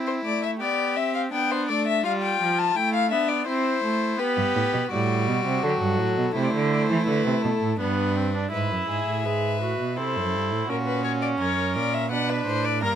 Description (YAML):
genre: classical, baroque-style fugue for string quartet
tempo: 84 BPM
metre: 3/4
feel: straight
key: unclear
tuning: A4 = 440 Hz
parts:
  - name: rich violin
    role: second line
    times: 0.0-13.0 s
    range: D4 to B4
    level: -30 LUFS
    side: left 2 dB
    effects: none
  - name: warm viola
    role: accompaniment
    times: 0.0-13.0 s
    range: F3 to G#4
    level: -27 LUFS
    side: right 3 dB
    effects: none
  - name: rich violin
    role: melody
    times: 0.1-13.0 s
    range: G4 to Bb5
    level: -26 LUFS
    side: left 7 dB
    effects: none
  - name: rich cello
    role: bass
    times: 4.4-13.0 s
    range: F#2 to E3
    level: -26 LUFS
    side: right 4 dB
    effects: none
room: little or no reverb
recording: close, detailed microphones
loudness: -22 LUFS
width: side -9 dB against mid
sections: 0.0-8.5 A section; 8.5-13.0 B section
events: none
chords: 0.0 C; 1.3 G/B; 2.0 G7; 3.5 C; 4.2 G; 5.6 D (rootless); 6.4 D5/C; 7.8 G; 8.5 E; 10.0 Am; 10.7 F#/A#; 12.1 Bm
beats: 0.61 1.32 | 2.04 2.76 3.47 | 4.19 4.91 5.63 | 6.35 7.07 7.80 | 8.52 9.25 9.97 | 10.69 11.40 12.12 | 12.83